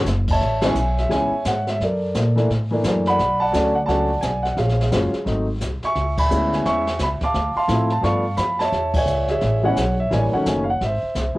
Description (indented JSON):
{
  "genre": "jazz piano trio",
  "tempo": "173 BPM",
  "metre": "4/4",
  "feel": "swing 63% on 8ths",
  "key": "A major",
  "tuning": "A4 = 440 Hz",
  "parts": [
    { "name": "warm concert grand piano", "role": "melody", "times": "0.0-11.4 s", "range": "D#3 to D6", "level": "-20 LUFS", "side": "equal", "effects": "none" },
    { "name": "upright bass", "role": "bass", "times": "0.0-11.4 s", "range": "F#1 to A#2", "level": "-23 LUFS", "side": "equal", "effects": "tube saturation" },
    { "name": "jazz brush drum kit", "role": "drums", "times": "0.1-11.4 s", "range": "brushed snare drum, crash cymbal, hi-hat, kick drum, ride cymbal, snare drum", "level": "-27 LUFS", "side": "equal", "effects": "cassette tape" }
  ],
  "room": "light reverb",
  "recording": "home recording on cassette",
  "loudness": "-18 LUFS",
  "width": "side -19 dB against mid",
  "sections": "0.4-11.4 A section",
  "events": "band accent 0.6, 6.1, 8.9",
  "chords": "0.4 Amaj7; 1.8 F#7alt; 3.2 Bm7; 4.6 F#maj9; 5.3 G#7b9; 6.0 C#m7; 7.3 Dm7; 8.0 G9; 8.7 Amaj7; 10.1 D#m7b5; 10.8 G#"
}